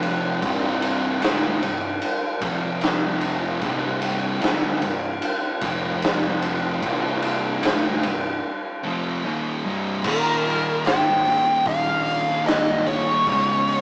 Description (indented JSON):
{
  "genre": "stoner and doom metal",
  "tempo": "75 BPM",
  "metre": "4/4",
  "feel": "straight",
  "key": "C minor",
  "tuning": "A4 = 439 Hz",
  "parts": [
    { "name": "thick fuzz guitar", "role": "riff", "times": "0.0-13.8 s", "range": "C2 to F3", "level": "-31 LUFS", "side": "left 1 dB", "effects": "distortion" },
    { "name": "thick fuzz guitar", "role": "riff", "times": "0.0-13.8 s", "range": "C2 to F3", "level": "-29 LUFS", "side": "equal", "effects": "distortion" },
    { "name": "thick fuzz guitar", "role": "riff", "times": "0.0-13.8 s", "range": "C2 to F3", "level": "-30 LUFS", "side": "equal", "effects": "distortion" },
    { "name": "fuzz picked electric bass", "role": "bass", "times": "0.0-13.8 s", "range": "C1 to Bb1", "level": "-31 LUFS", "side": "equal", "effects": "overdrive" },
    { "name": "raw garage drum kit", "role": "drums", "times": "0.0-13.8 s", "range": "crash cymbal, hi-hat, kick drum, ride cymbal, snare drum", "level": "-23 LUFS", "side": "equal", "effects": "none" },
    { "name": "fuzz lead guitar", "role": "melody", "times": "10.1-13.8 s", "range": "Bb4 to G5", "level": "-20 LUFS", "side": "equal", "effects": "wah, distortion" }
  ],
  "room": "light reverb",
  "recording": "rough rehearsal-room recording, small speaker sound",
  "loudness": "-20 LUFS",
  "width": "side -32 dB against mid",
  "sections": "0.0-10.0 A section; 10.0-13.8 B section",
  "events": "break 8.4-10.0",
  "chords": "0.4 C5; 2.4 F5; 3.6 C5; 5.6 F5; 6.8 Cm; 10.0 Eb; 13.3 Db5",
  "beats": "| 0.42 1.22 2.02 2.82 | 3.62 4.42 5.22 6.02 | 6.83 7.63 8.43 9.24 | 10.04 10.85 11.66 12.46 | 13.27"
}